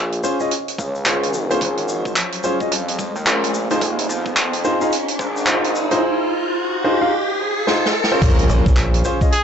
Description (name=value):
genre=glitch hop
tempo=109 BPM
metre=4/4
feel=swing 61% on 16ths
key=Bb minor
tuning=A4 = 440 Hz
part: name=gritty driven synth bass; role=bass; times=0.0-9.0 s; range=F1 to F2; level=-22 LUFS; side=equal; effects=high-pass filter
part: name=riser and impact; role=sound effects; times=1.2-9.4 s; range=none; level=-23 LUFS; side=equal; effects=none
part: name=vintage drum kit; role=drums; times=0.1-9.4 s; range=crash cymbal, handclaps, hi-hat, rim click, snare drum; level=-22 LUFS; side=right 1 dB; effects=high-pass filter on hats, high-pass filter on cymbals, high-pass filter on snare, high-pass filter on room
part: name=clear baby grand piano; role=stabs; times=0.2-9.3 s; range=Db4 to F5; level=-21 LUFS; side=equal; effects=vintage 12-bit sampler grit, sidechain pumping, dub echo
part: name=tube shaker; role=percussion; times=0.2-9.4 s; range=none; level=-33 LUFS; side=left 3 dB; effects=none
part: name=electronic kick drum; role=drums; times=0.8-9.3 s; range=none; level=-18 LUFS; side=equal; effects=high-pass filter on kick
part: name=bright trumpet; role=melody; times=9.3-9.4 s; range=Ab4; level=-17 LUFS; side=equal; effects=none
room=moderate plate reverb, RT60 1.7 s, small room ambience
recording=dark, warm production, nothing above 8.0 kHz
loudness=-16 LUFS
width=side -8 dB against mid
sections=0.0-8.2 A section; 8.2-9.4 B section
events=build-up 0.0-8.2; riser 1.2-8.2; drum fill 7.7-8.2; drop 8.2-9.4; impact 8.2-9.4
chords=0.0 Bbm7; 3.8 Fm7; 8.2 Bbm7